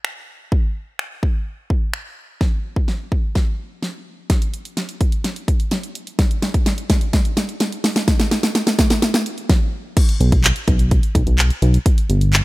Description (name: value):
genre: dance-pop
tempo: 127 BPM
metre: 4/4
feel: straight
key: unclear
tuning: A4 = 442 Hz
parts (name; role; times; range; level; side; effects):
- pop drum kit; drums; 0.0-12.4 s; crash cymbal, finger snaps, handclaps, hi-hat, kick drum, snare drum; -17 LUFS; equal; none
- chorused synth bass; bass; 10.2-12.4 s; G1 to B1; -15 LUFS; equal; sidechain pumping
room: digital ambience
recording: none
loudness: -16 LUFS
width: side -19 dB against mid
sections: 0.0-2.4 A section; 2.4-10.0 B section; 10.0-12.4 C section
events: build-up 2.4-10.0; drum fill 2.4-9.5; drop 10.0-12.4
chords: none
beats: 0.05 | 0.52 0.99 1.46 1.94 | 2.41 2.88 3.35 3.83 | 4.30 4.77 5.24 5.72 | 6.19 6.66 7.13 7.61 | 8.08 8.55 9.02 9.50 | 9.97 10.44 10.91 11.39 | 11.86 12.33